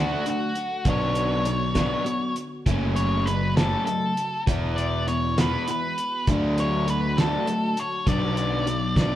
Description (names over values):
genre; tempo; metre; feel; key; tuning
indie rock; 66 BPM (dotted quarters); 6/8; straight; unclear; A4 = 441 Hz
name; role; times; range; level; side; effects
octave-fuzz lead guitar; melody; 0.0-9.2 s; F#4 to D5; -28 LUFS; left 1 dB; distortion
warm analog pad; sustained chords; 0.0-9.2 s; C#3 to C#5; -36 LUFS; right 1 dB; chorus
crunchy overdriven guitar; riff; 0.0-9.2 s; E3 to F#4; -27 LUFS; left 1 dB; none
fuzz fingered electric bass; bass; 0.0-9.1 s; E1 to D2; -28 LUFS; equal; overdrive
cloth-damped thuddy drum kit; drums; 0.3-9.1 s; hi-hat, kick drum, snare drum; -25 LUFS; equal; none
room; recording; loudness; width
moderate stone room reverb, RT60 1.4 s; band playing live in one room; -22 LUFS; side -12 dB against mid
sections
0.0-9.2 A section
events
none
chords
0.0 D; 0.9 Bmadd9; 2.7 F#m; 4.5 Eadd9; 6.3 D; 8.1 Bm